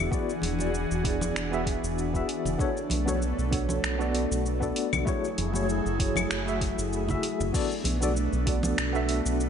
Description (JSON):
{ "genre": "sunset chillout", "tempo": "97 BPM", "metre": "4/4", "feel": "swing 54% on 16ths", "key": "B dorian", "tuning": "A4 = 440 Hz", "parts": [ { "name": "tine electric piano", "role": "accompaniment", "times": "0.0-9.5 s", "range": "A3 to E5", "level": "-30 LUFS", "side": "moving between left 6 dB and right 5 dB", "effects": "medium tremolo, auto-pan, diffuse ambient delay" }, { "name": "airy breathy pad", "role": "sustained chords", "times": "0.0-9.5 s", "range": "E3 to G#4", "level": "-31 LUFS", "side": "equal", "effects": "chorus" }, { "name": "round analog bass", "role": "bass", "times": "0.0-9.5 s", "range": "E1 to B1", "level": "-30 LUFS", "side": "equal", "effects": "none" }, { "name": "deep house drum kit", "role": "drums", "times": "0.1-9.5 s", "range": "claves, crash cymbal, finger snaps, hi-hat, shaker", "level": "-34 LUFS", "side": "left 1 dB", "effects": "overdrive" }, { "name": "electronic kick drum", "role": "drums", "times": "0.1-8.6 s", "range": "none", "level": "-31 LUFS", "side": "equal", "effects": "overdrive" }, { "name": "congas", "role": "percussion", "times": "0.4-8.7 s", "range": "none", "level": "-37 LUFS", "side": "right 1 dB", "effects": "none" } ], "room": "moderate plate reverb, RT60 2.4 s", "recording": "dreamy mix soaked in reverb, nothing above 10.7 kHz", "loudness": "-25 LUFS", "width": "side -8 dB against mid", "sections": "0.0-7.5 A section; 7.5-9.5 B section", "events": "none", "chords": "0.0 E9; 2.6 Bm9; 5.1 F#m9; 7.5 Bm7" }